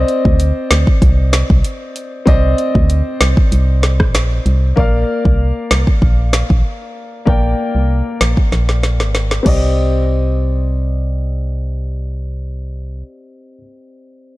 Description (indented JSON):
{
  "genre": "dancehall",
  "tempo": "96 BPM",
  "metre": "4/4",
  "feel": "straight",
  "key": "C minor",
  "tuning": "A4 = 440 Hz",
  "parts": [
    { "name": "clear concert grand piano", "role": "accompaniment", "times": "0.0-14.4 s", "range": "Bb3 to G5", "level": "-21 LUFS", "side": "left 2 dB", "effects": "sidechain pumping, low-pass filter" },
    { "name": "organ-like FM bass", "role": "bass", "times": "0.0-13.0 s", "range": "Ab1 to D2", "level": "-15 LUFS", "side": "equal", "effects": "none" },
    { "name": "afro-pop drum kit", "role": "drums", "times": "0.1-9.6 s", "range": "crash cymbal, hi-hat, kick drum, rim click, snare drum", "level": "-14 LUFS", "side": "equal", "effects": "none" }
  ],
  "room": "digital ambience",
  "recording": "dark, warm production",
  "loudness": "-12 LUFS",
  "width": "side -18 dB against mid",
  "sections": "0.0-4.8 A section; 4.8-9.8 B section; 9.8-12.3 C section",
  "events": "filter sweep on grand piano 4.8-9.8; drum fill 8.5-9.8",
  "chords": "0.0 Cmadd9; 4.8 Bb; 9.5 Cmadd9"
}